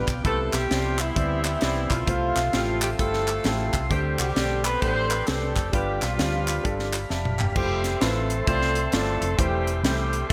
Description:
uptempo gospel; 131 BPM; 4/4; swing 63% on 8ths; A4 = 440 Hz
breathy alto saxophone; melody; 0.0-6.9 s; E4 to C5; -32 LUFS; equal
mellow horn section; melody; 0.0-10.3 s; E3 to C5; -32 LUFS; equal
warm grand piano; accompaniment; 0.0-10.3 s; G2 to A5; -33 LUFS; equal
mellow tonewheel organ; sustained chords; 0.0-10.3 s; B3 to D6; -35 LUFS; equal; slow rotary speaker
hollow-body short-scale fingered electric bass; bass; 0.0-10.3 s; E1 to D2; -31 LUFS; equal
crisp fusion drum kit; drums; 0.1-10.3 s; crash cymbal, hi-hat, kick drum, snare drum, toms; -30 LUFS; equal
group handclap; percussion; 0.1-7.5 s; -34 LUFS; equal
moderate lush hall reverb, RT60 1.8 s, small room ambience; bright 1980s-style digital production; -24 LUFS; mono
0.0-7.6 A section; 7.6-10.3 B section
drum fill 7.1-7.6
0.2 Cmaj7; 2.1 Fmaj7; 3.9 D7sus4; 5.7 G7; 7.6 Fmaj7; 9.4 Am7/E

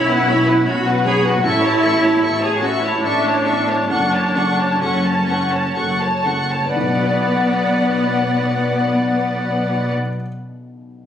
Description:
cinematic, emotional film score for orchestra; 59-79 BPM; 3/4; rubato; B minor; A4 = 440 Hz
rich symphonic violin section; melody; 0.0-9.9 s; F#5 to C#6; -24 LUFS; left 4 dB
rich symphonic violin section; second line; 0.0-9.9 s; A4 to A5; -22 LUFS; left 1 dB
felt-muted upright piano; accompaniment; 0.0-11.1 s; A1 to F#5; -26 LUFS; left 1 dB
rich symphonic viola section; accompaniment; 0.0-9.9 s; B3 to G#4; -19 LUFS; equal
clear symphonic double bass section; bass; 0.0-9.9 s; F#1 to B1; -25 LUFS; equal
warm symphonic cello section; bass; 0.0-9.9 s; F#2 to B2; -26 LUFS; equal
wet stone room reverb, RT60 1.0 s; recorded on a phone in the room, club reverb; -15 LUFS; side -9 dB against mid
0.0-6.7 A section; 6.7-9.7 B section
slowing down 0.3-6.7
0.0 Bsus2; 1.4 A; 3.9 F#m; 6.7 Bm

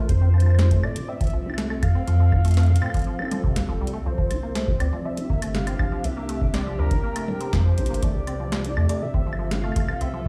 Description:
IDM; 121 BPM; 4/4; straight; F major; A4 = 440 Hz
warbly tape-like pad; sustained chords; 0.0-10.3 s; C3 to G5; -36 LUFS; equal; chorus, built-in reverb, phaser, sidechain pumping
deep acid bass; arpeggios; 0.0-10.3 s; F2 to F4; -34 LUFS; equal; tape echo
warm sub bass; bass; 0.0-10.3 s; F1 to A2; -24 LUFS; equal
warm velvety synth lead; melody; 0.1-10.3 s; Bb4 to F5; -36 LUFS; equal; chorus, tape echo
booming analog drum machine; drums; 0.1-10.1 s; claves, hi-hat, snare drum, toms; -34 LUFS; equal
electronic kick drum; drums; 0.1-10.3 s; -27 LUFS; equal
little or no reverb; played on a big sound system in a bare room, large studio reverb; -23 LUFS; mono
0.0-10.3 A section
0.1 F; 4.1 Csus2; 8.0 F

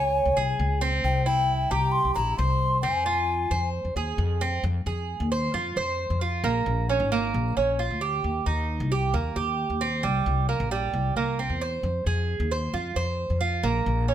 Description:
latin, Cuban son and guajira; 133 BPM; 4/4; straight; F minor; A4 = 439 Hz
mellow alto ocarina; melody; 0.0-3.7 s; G5 to C6; -26 LUFS; left 3 dB
Cuban tres; arpeggios; 0.0-14.1 s; G3 to Db5; -27 LUFS; right 4 dB
upright bass; bass; 0.0-14.1 s; Ab1 to F2; -27 LUFS; left 1 dB
moderate large studio reverb, RT60 1.1 s; -23 LUFS; side -10 dB against mid
0.0-4.6 A section; 4.6-14.1 B section
0.0 Db5; 1.0 C; 2.8 Fm; 6.4 Bbm7; 8.2 Eb; 10.0 C7; 11.8 Fm; 13.6 Bbm

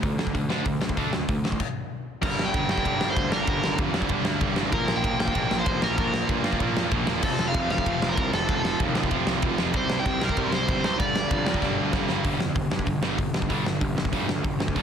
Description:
punk rock; 191 BPM; 4/4; straight; G minor; A4 = 435 Hz
distorted electric guitar; riff; 0.0-14.8 s; F2 to D4; -30 LUFS; right 11 dB; distortion
sludgy distorted guitar; riff; 0.0-14.8 s; F2 to D4; -31 LUFS; left 10 dB; overdrive
fuzz picked electric bass; bass; 0.0-14.8 s; E1 to D3; -32 LUFS; equal; overdrive
big rock drum kit; drums; 0.0-14.8 s; crash cymbal, hi-hat, kick drum, ride cymbal, snare drum; -27 LUFS; left 1 dB
overdriven semi-hollow guitar; melody; 2.2-11.9 s; A4 to G5; -28 LUFS; equal
high-gain distorted guitar; riff; 2.2-12.2 s; F2 to E4; -32 LUFS; right 2 dB; distortion
light reverb; dense, heavily limited modern master; -22 LUFS; side -8 dB against mid
0.0-2.2 A section; 2.2-12.2 B section; 12.2-14.8 A section
stop 1.6-2.2; drum fill 11.6-12.2
0.0 D5; 2.2 Gm; 4.7 Bb; 7.2 F; 9.7 C; 11.0 Gm; 12.2 G5

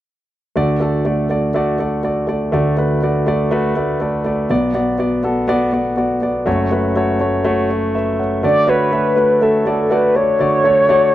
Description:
pop; 122 BPM; 4/4; straight; D major; A4 = 440 Hz
warm concert grand piano; accompaniment; 0.6-11.1 s; F#1 to F#5; -15 LUFS; equal
mellow horn-like synth lead; melody; 8.4-11.1 s; A4 to D5; -13 LUFS; equal; chorus
wet studio reverb, RT60 0.7 s; -14 LUFS; side -13 dB against mid
0.6-8.4 A section; 8.4-11.1 B section
0.6 D; 4.5 Bm; 6.5 F#m; 8.4 D

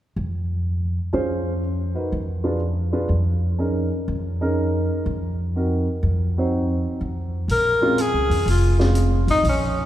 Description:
jazz, small-group swing and bop; 123 BPM; 4/4; swing 66% on 8ths; Bb minor; A4 = 440 Hz
upright bass; bass; 0.2-9.9 s; F1 to F2; -22 LUFS; equal
dark grand piano; accompaniment; 1.1-9.4 s; Ab3 to C5; -25 LUFS; right 1 dB
breathy tenor saxophone; melody; 7.5-9.9 s; Db4 to Bb4; -20 LUFS; left 2 dB
vintage drum kit; drums; 7.5-9.6 s; hi-hat, snare drum; -35 LUFS; equal
wet church reverb, RT60 3.2 s; recorded in a church or concert hall; -19 LUFS; side -12 dB against mid
0.0-7.5 A section; 7.5-9.9 B section
0.0 Fm; 1.6 Abm9; 2.6 Fdim7; 3.6 Db69/F; 5.5 Cm7b5; 6.5 F5; 7.5 Bbm7

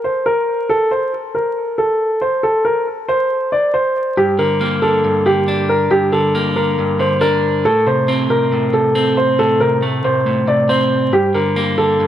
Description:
hip hop; 138 BPM; 4/4; half-time; A4 = 440 Hz
dark grand piano; melody; 0.0-12.1 s; G4 to D5; -15 LUFS; equal; ping-pong delay
clean electric guitar; accompaniment; 4.2-12.1 s; G2 to D4; -17 LUFS; equal
light reverb; vinyl crackle; -14 LUFS; side -11 dB against mid
0.0-4.2 A section; 4.2-12.1 B section
0.0 N.C.; 4.2 Gm; 7.7 Am; 11.1 Gm

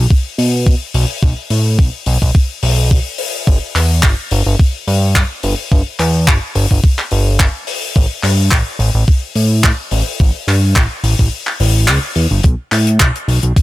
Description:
nu-disco, nu disco; 107 BPM; 4/4; swing 54% on 16ths; A4 = 440 Hz
fat analog bass; bass; 0.0-13.5 s; G1 to B2; -13 LUFS; equal; sidechain pumping
electronic kick drum; drums; 0.1-13.6 s; -11 LUFS; equal
damped 70s drum kit; drums; 0.4-13.6 s; handclaps, hi-hat; -18 LUFS; left 2 dB
little or no reverb; -11 LUFS; side -17 dB against mid
0.0-13.6 A section
kick drops out 11.3-12.4

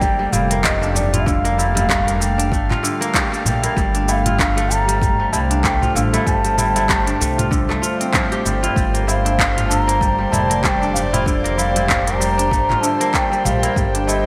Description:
organic downtempo; 96 BPM; 4/4; swing 57% on 16ths; A4 = 441 Hz
breathy bass bansuri; melody; 0.0-14.3 s; D5 to Bb5; -24 LUFS; equal; delay
airy breathy pad; sustained chords; 0.0-14.3 s; G3 to F5; -27 LUFS; equal; chorus, sidechain pumping
kora; arpeggios; 0.0-14.3 s; D3 to G4; -25 LUFS; equal; delay
upright bass; bass; 0.0-14.3 s; F1 to C2; -24 LUFS; equal; sidechain pumping
electronic kick drum; drums; 0.0-13.9 s; -25 LUFS; equal
organic electronic drum kit; drums; 0.0-14.2 s; cabasa, handclaps, hi-hat, toms; -24 LUFS; equal; gated reverb
tabla; percussion; 0.0-14.2 s; -31 LUFS; equal
moderate lush hall reverb, RT60 2.8 s; bright 1980s-style digital production; -18 LUFS; mono
0.0-14.3 A section
0.0 Gm7; 3.8 Dm7/G; 8.8 Bbmaj7

